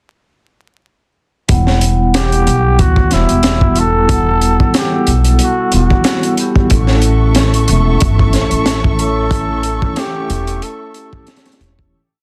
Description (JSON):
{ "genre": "trip hop", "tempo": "92 BPM", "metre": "4/4", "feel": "swing 55% on 16ths", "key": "E dorian", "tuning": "A4 = 441 Hz", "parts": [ { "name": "vibraphone with soft mallets", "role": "accompaniment", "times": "1.5-11.9 s", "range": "G3 to F#5", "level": "-20 LUFS", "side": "equal", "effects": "tremolo, tape echo" }, { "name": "upright bass", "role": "bass", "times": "1.5-11.9 s", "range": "E1 to D2", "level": "-16 LUFS", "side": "equal", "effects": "none" }, { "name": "crunchy breakbeat drum kit", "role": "drums", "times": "1.5-11.9 s", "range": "hi-hat, kick drum, snare drum", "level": "-18 LUFS", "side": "equal", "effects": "none" }, { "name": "trumpet with bucket mute", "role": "melody", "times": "2.2-11.6 s", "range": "E4 to A4", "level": "-21 LUFS", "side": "equal", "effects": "dub echo" }, { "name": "muted symphonic violin section", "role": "sustained chords", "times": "6.7-11.9 s", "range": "A4 to C#6", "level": "-25 LUFS", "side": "equal", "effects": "none" } ], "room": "small room ambience", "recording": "dense, heavily limited modern master, vinyl crackle", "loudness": "-13 LUFS", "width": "mono", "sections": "1.5-11.9 groove", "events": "fade-out 8.4-11.9", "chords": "1.5 Emadd9; 6.7 A" }